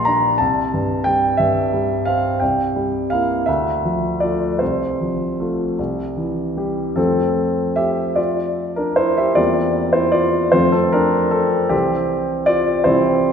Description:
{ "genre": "classical, romantic character piece for solo piano", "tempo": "49-61 BPM (dotted quarters)", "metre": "6/8", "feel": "rubato", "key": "F major", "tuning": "A4 = 441 Hz", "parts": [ { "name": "warm grand piano", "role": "solo", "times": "0.0-13.3 s", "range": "Bb1 to C6", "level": "-16 LUFS", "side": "equal", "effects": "none" } ], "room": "wet concert hall reverb, RT60 1.7 s", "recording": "minimal, uncompressed stereo recording", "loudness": "-16 LUFS", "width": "side -7 dB against mid", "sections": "0.0-7.0 A section; 7.0-13.3 B section", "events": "none", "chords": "0.4 C; 2.4 C7; 3.5 Dm; 4.6 F/C; 5.8 C; 7.0 F; 9.4 C7/E; 10.5 F; 11.7 C", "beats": "| 0.40 1.39 | 2.41 3.47 | 4.61 5.79 | 6.97 8.18 | 9.38 10.54 | 11.72 12.88" }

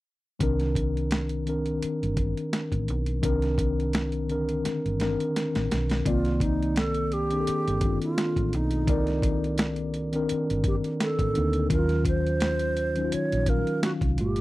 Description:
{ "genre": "R&B, neo-soul", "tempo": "85 BPM", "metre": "4/4", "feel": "swing 54% on 16ths", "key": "C dorian", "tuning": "A4 = 441 Hz", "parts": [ { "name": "mellow tine electric piano", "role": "accompaniment", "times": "0.4-14.4 s", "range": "Bb2 to F5", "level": "-27 LUFS", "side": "left 2 dB", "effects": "slow stereo tremolo" }, { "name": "hollow-body short-scale fingered electric bass", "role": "bass", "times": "0.4-14.4 s", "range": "G1 to Eb2", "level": "-29 LUFS", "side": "equal", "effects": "none" }, { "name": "boom bap sampler-style drum kit", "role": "drums", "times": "0.4-14.4 s", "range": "hi-hat, kick drum, snare drum", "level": "-28 LUFS", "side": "equal", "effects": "overdrive" }, { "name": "alto flute", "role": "melody", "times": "6.1-14.4 s", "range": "Eb4 to Db5", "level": "-29 LUFS", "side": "right 2 dB", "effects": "slapback echo" } ], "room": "little or no reverb", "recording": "dry, close 1970s-style studio recording", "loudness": "-24 LUFS", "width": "side -18 dB against mid", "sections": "0.4-6.1 A section; 6.1-14.4 B section", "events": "drum fill 4.6-6.1", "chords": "0.4 Cm9; 11.7 Ebm9", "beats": "| 0.41 1.11 1.82 2.52 | 3.23 3.94 4.64 5.35 | 6.05 6.76 7.47 8.17 | 8.88 9.58 10.29 10.99 | 11.70 12.41 13.11 13.82" }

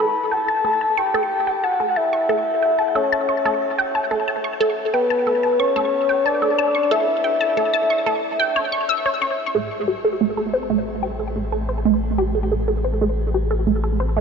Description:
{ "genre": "ambient, sequencer-driven space music", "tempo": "91 BPM", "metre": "4/4", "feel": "straight", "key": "A minor from 9.5 s", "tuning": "A4 = 436 Hz", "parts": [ { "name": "soft octave-layered synth lead", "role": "melody", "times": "0.0-8.9 s", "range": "B4 to B5", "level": "-20 LUFS", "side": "left 2 dB", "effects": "chorus, shimmer reverb, tape echo" }, { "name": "resonant blip pluck", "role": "riff", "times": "0.0-14.2 s", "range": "A3 to E6", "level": "-21 LUFS", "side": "right 2 dB", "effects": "phaser, shimmer reverb, tape echo" }, { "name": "round analog bass", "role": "bass", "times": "9.5-14.2 s", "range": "A1", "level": "-24 LUFS", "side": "left 1 dB", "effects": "none" } ], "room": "wet huge ambient reverb, RT60 7.7 s", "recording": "nothing above 7.8 kHz", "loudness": "-18 LUFS", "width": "side -6 dB against mid", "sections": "0.0-9.5 A section; 9.5-14.2 B section", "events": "filter sweep on synth arpeggio sound 0.0-9.5, 9.5-14.2", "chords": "0.0 A; 9.5 N.C.", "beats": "0.32 0.98 | 1.64 2.30 2.96 3.61 | 4.27 4.93 5.59 6.25 | 6.91 7.57 8.23 8.89 | 9.55 10.21 10.87 11.53 | 12.19 12.85 13.50 14.16" }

